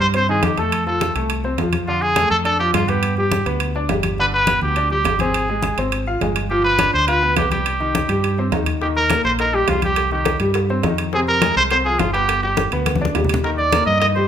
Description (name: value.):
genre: latin, salsa.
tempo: 208 BPM.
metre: 4/4.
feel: straight.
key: C minor.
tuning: A4 = 440 Hz.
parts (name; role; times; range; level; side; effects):
clear trumpet; melody; 0.0-14.3 s; F4 to Eb5; -18 LUFS; right 1 dB; none.
bright baby grand piano; accompaniment; 0.0-14.3 s; C3 to F5; -23 LUFS; left 2 dB; none.
fingered electric bass; bass; 0.0-14.3 s; G1 to G2; -23 LUFS; right 1 dB; none.
congas; percussion; 0.0-14.3 s; none; -26 LUFS; left 4 dB; none.
timbales; percussion; 0.1-14.2 s; none; -26 LUFS; right 6 dB; none.
bongos; percussion; 8.8-14.3 s; none; -30 LUFS; left 6 dB; none.
room: moderate large studio reverb, RT60 1.2 s.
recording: minimal, uncompressed stereo recording.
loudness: -16 LUFS.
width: side -9 dB against mid.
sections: 0.0-14.3 A section.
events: drum fill 12.9-13.4.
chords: 0.0 Cm; 0.7 F; 1.9 Dm/F; 3.0 G; 5.3 Fm/Ab; 6.5 G7; 7.7 Cm; 8.8 Eb; 10.0 Cm; 11.1 Fm; 12.3 G; 13.4 Eb.